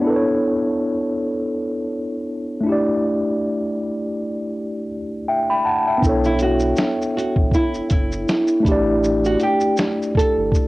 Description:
lo-fi hip hop; 80 BPM; 4/4; swing 56% on 16ths; B minor; A4 = 440 Hz
mellow tine electric piano; accompaniment; 0.0-10.7 s; A3 to B5; -19 LUFS; equal; medium stereo tremolo, cassette tape, low-pass filter
warm sub bass; bass; 6.0-10.5 s; F#1 to B1; -25 LUFS; equal
lo-fi sampler-style drum kit; drums; 6.0-10.7 s; hi-hat, kick drum, shaker, snare drum; -20 LUFS; equal; vintage 12-bit sampler grit, cassette tape
nylon-string guitar; melody; 6.3-10.3 s; E4 to A4; -21 LUFS; right 1 dB; low-pass filter, cassette tape
light reverb; home recording on cassette; -18 LUFS; side -20 dB against mid
0.0-6.0 A section; 6.0-10.7 B section
0.0 Bm11; 2.6 A7sus4; 6.0 Bm11; 8.6 A7sus4
| 0.02 0.77 1.52 2.27 | 3.02 3.77 4.52 5.27 | 6.02 6.77 7.52 8.27 | 9.02 9.77 10.52

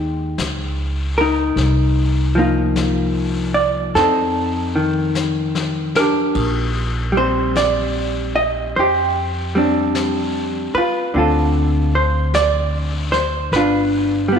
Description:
jazz ballad; 50 BPM; 4/4; swing 66% on 8ths; A4 = 440 Hz
vintage hollow-body jazz guitar; accompaniment; 0.0-14.4 s; D3 to Eb5; -17 LUFS; equal
upright bass; bass; 0.0-14.4 s; G1 to F2; -22 LUFS; equal
vintage brush drum kit; drums; 0.4-14.4 s; brushed snare drum, hi-hat, kick drum, ride cymbal, snare drum; -28 LUFS; left 5 dB
moderate echo chamber reverb, RT60 2.2 s; 1960s-style stereo; -16 LUFS; side -7 dB against mid
0.0-14.4 A section
drum fill 5.2-6.4
0.0 Abmaj9; 1.6 Cm11; 4.0 F13; 6.4 Bb69; 11.2 Dm7; 13.5 G7
0.39 | 1.57 2.76 3.95 5.16 | 6.36 7.56 8.76 9.96 | 11.15 12.34 13.52

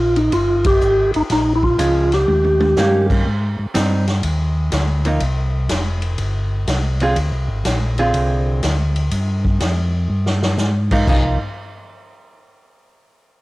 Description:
soul jazz organ trio; 123 BPM; 4/4; swing 67% on 8ths; C minor; A4 = 437 Hz
percussive tonewheel organ; melody; 0.0-3.1 s; Eb4 to G4; -16 LUFS; equal; fast rotary speaker, cassette tape
mellow tonewheel organ; bass; 0.0-11.4 s; F1 to Ab2; -18 LUFS; equal; chorus vibrato, stopped rotary speaker
swinging big-band drum kit; drums; 0.2-11.2 s; crash cymbal, hi-hat, kick drum, ride cymbal, snare drum, toms; -22 LUFS; equal; cassette tape
archtop guitar, miked and amplified; accompaniment; 1.8-11.4 s; D3 to Ab4; -21 LUFS; right 2 dB; cassette tape
small room ambience; home recording on cassette; -15 LUFS; side -20 dB against mid
0.0-3.3 A section; 3.3-11.1 B section; 11.1-13.0 C section
band accent 0.6; drum fill 2.3-2.8, 10.1-10.6
0.0 C7(no3) (rootless); 1.3 Bbm7; 2.3 Eb7; 3.3 Abmaj7; 5.2 Csus4; 7.2 Dm7b5; 9.1 Fmadd9; 11.1 Cm7
0.32 0.81 | 1.30 1.79 2.28 2.77 | 3.26 3.74 4.23 4.72 | 5.21 5.70 6.19 6.68 | 7.17 7.65 8.14 8.63 | 9.12 9.61 10.10 10.59 | 11.08

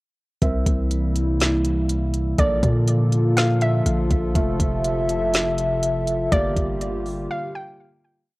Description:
hip hop, atmospheric cloud-rap; 122 BPM; 4/4; half-time; A4 = 438 Hz
dark analog pad; sustained chords; 0.4-8.3 s; C3 to E5; -24 LUFS; equal; wide subtle chorus, sidechain pumping, cassette tape
long sustained 808-style bass; bass; 0.4-7.3 s; F1 to Bb2; -23 LUFS; equal
smooth R&B drum kit; drums; 0.4-7.2 s; hi-hat, kick drum, snare drum; -23 LUFS; equal; overdrive, cassette tape
felt-muted upright piano; texture; 0.4-8.3 s; A3 to F5; -31 LUFS; right 1 dB; cassette tape
hollow square pluck; melody; 2.4-7.8 s; D5 to G5; -27 LUFS; equal; chorus, low-pass filter, analog delay
light reverb, digital ambience; home recording on cassette; -19 LUFS; side -20 dB against mid
0.4-8.3 verse
fade-out 6.3-8.3; break 7.3-8.3
0.4 C7; 2.4 Bbmaj7; 4.4 Fmaj7; 6.3 Gm7
| 0.42 0.91 1.40 1.89 | 2.38 2.88 3.37 3.86 | 4.35 4.84 5.34 5.83 | 6.32 6.81 7.30 7.79

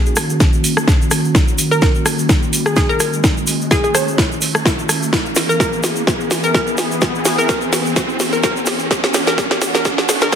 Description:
bass house; 127 BPM; 4/4; swing 55% on 16ths; Eb phrygian; A4 = 435 Hz
hollow square pluck; melody; 0.0-10.3 s; Ab4 to Db5; -20 LUFS; equal; chorus, ping-pong delay
sweeping resonant pad; sustained chords; 0.0-10.4 s; Eb3 to Ab4; -22 LUFS; equal; chorus, sidechain pumping
riser; sound effects; 0.1-10.4 s; -25 LUFS; right 2 dB
tube shaker; percussion; 0.1-10.4 s; -25 LUFS; left 1 dB
house drum kit; drums; 0.2-10.4 s; hi-hat, rim click, snare drum; -18 LUFS; equal
electronic kick drum; drums; 0.4-10.4 s; -17 LUFS; equal
moderate digital room reverb, RT60 1.2 s, digital ambience; dense, heavily limited modern master, high-pass filter; -13 LUFS; side -8 dB against mid
0.0-10.4 A section
build-up 0.0-10.4; drum fill 0.0-10.4; filter sweep 0.0-10.4; riser 0.1-10.4
0.0 Ebm7; 5.1 Dbm7
0.40 0.88 | 1.35 1.82 2.29 2.77 | 3.24 3.71 4.18 4.66 | 5.13 5.60 6.07 6.54 | 7.02 7.49 7.96 8.44 | 8.91 9.38 9.85 10.32

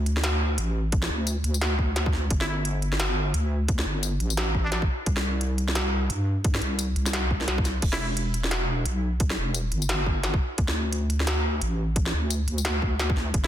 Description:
half-time drum and bass; 174 BPM; 4/4; swing 59% on 16ths, half-time; A4 = 440 Hz
deep soft wobble bass; bass; 0.0-13.5 s; E1 to G2; -26 LUFS; equal; chorus
industrial drum kit; drums; 0.1-13.5 s; crash cymbal, hi-hat, snare drum, tambourine; -28 LUFS; equal
electronic kick drum; drums; 0.9-13.4 s; -25 LUFS; equal
trumpet with straight mute; melody; 2.4-2.5, 4.7-4.8, 7.9-8.1, 13.4-13.5 s; D4 to E4; -36 LUFS; equal; tape echo
little or no reverb; dense, heavily limited modern master; -23 LUFS; side -11 dB against mid
0.0-13.5 A section
0.0 D5; 2.3 Gsus2; 5.1 C5; 7.8 Em; 10.6 D5
0.24 0.58 | 0.93 1.27 1.61 1.96 | 2.31 2.65 2.99 3.34 | 3.68 4.03 4.37 4.72 | 5.06 5.41 5.75 6.10 | 6.44 6.79 7.13 7.48 | 7.82 8.17 8.51 8.86 | 9.20 9.55 9.89 10.24 | 10.58 10.93 11.27 11.62 | 11.96 12.30 12.65 12.99 | 13.34

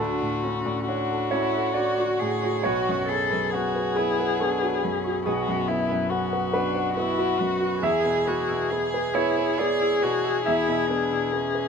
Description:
neoclassical piano and strings; 69 BPM; 3/4; rubato; B dorian; A4 = 440 Hz
dark violin; melody; 0.0-11.7 s; E4 to A4; -26 LUFS; left 7 dB
warm cello; second line; 0.0-11.7 s; B3 to G#4; -29 LUFS; right 5 dB
clear grand piano; accompaniment; 0.0-11.7 s; B1 to E5; -26 LUFS; right 2 dB
Celtic harp; arpeggios; 0.0-11.7 s; D4 to C#6; -34 LUFS; left 5 dB
light reverb; minimal, uncompressed stereo recording, faint mains hum; -22 LUFS; side -6 dB against mid
0.0-11.7 A section
0.0 Dmaj7; 2.6 Bsus2; 7.8 E
0.88 1.76 | 2.64 3.52 4.39 | 5.26 6.11 6.97 | 7.84 8.71 9.59 | 10.46 11.33

